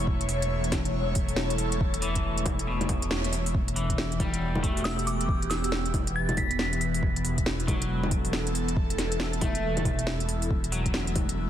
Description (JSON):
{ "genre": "future garage", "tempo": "138 BPM", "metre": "4/4", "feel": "swing 62% on 16ths", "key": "E dorian", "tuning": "A4 = 440 Hz", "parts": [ { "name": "airy breathy pad", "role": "sustained chords", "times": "0.0-11.5 s", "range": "E3 to C#5", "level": "-33 LUFS", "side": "equal", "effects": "chorus, phaser, sidechain pumping" }, { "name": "dark detuned saw bass", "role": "bass", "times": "0.0-11.5 s", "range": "E1", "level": "-30 LUFS", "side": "equal", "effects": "sidechain pumping" }, { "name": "backwards swelling texture", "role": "texture", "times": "0.0-3.6 s", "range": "F#3 to F#5", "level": "-46 LUFS", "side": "left 1 dB", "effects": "none" }, { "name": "electronic kick drum", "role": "drums", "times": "0.1-11.3 s", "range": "none", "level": "-29 LUFS", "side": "equal", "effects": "overdrive" }, { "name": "organic electronic drum kit", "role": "drums", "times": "0.2-11.4 s", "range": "bongos, hi-hat, snare drum", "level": "-31 LUFS", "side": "equal", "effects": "overdrive" }, { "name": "electric guitar at the edge of break-up", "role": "accompaniment", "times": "2.0-11.4 s", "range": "B2 to A3", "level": "-34 LUFS", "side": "left 2 dB", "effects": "sidechain pumping, tape echo" }, { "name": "glassy synth bell", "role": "melody", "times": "4.8-7.0 s", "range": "D6 to B6", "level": "-33 LUFS", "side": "equal", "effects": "chorus, vintage 12-bit sampler grit, tape echo" } ], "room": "light reverb, digital ambience", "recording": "dense, heavily limited modern master, vinyl crackle", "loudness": "-25 LUFS", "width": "side -11 dB against mid", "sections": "0.0-3.5 A section; 3.5-11.5 A section", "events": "band accent 3.1", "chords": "0.0 Aadd9/E; 3.5 Emadd9; 10.5 Asus2/E", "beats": "| 0.07 0.50 0.94 1.37 | 1.81 2.24 2.68 3.11 | 3.54 3.98 4.42 4.85 | 5.28 5.72 6.15 6.59 | 7.02 7.46 7.89 8.33 | 8.76 9.20 9.63 10.07 | 10.50 10.94 11.37" }